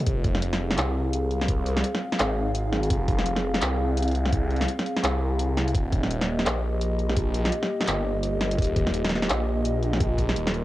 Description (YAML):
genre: half-time drum and bass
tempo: 169 BPM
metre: 4/4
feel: swing 60% on 16ths, half-time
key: F minor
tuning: A4 = 444 Hz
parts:
  - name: dark analog pad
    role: sustained chords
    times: 0.0-10.6 s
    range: Bb3 to F5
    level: -30 LUFS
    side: equal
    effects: chorus, sidechain pumping, cassette tape
  - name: phased detuned saw bass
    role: bass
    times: 0.1-10.6 s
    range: Eb1 to C2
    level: -26 LUFS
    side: equal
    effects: phaser
  - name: drum and bass drum kit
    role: drums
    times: 0.1-10.6 s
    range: handclaps, hi-hat, snare drum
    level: -27 LUFS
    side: equal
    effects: cassette tape
  - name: electronic kick drum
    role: drums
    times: 0.1-10.3 s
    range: none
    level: -26 LUFS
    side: equal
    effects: cassette tape
room: light reverb, digital ambience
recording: home recording on cassette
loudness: -22 LUFS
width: side -16 dB against mid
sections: 0.0-10.6 A section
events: none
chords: 0.1 Fm; 5.7 Eb